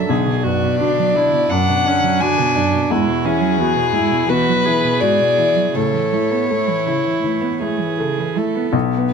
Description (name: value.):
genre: neoclassical piano and strings.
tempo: 80-87 BPM.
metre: 4/4.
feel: rubato.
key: unclear.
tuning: A4 = 440 Hz.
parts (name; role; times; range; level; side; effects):
dark violin; melody; 0.0-9.1 s; G#4 to G#5; -19 LUFS; left 5 dB; none.
warm cello; second line; 0.0-9.1 s; F#2 to B3; -21 LUFS; right 10 dB; none.
felt-muted upright piano; accompaniment; 0.0-9.1 s; B1 to A4; -20 LUFS; left 4 dB; none.
warm viola; accompaniment; 0.0-8.7 s; B3 to A4; -23 LUFS; right 6 dB; none.
room: moderate large studio reverb, RT60 1.2 s.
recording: close, detailed microphones.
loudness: -15 LUFS.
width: side -6 dB against mid.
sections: 0.0-8.7 A section.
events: none.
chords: 0.0 Bm; 2.9 Eadd9; 5.8 A.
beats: | 0.10 0.80 1.51 2.21 | 2.90 3.60 4.29 5.02 | 5.75 6.50 7.25 7.99 | 8.74.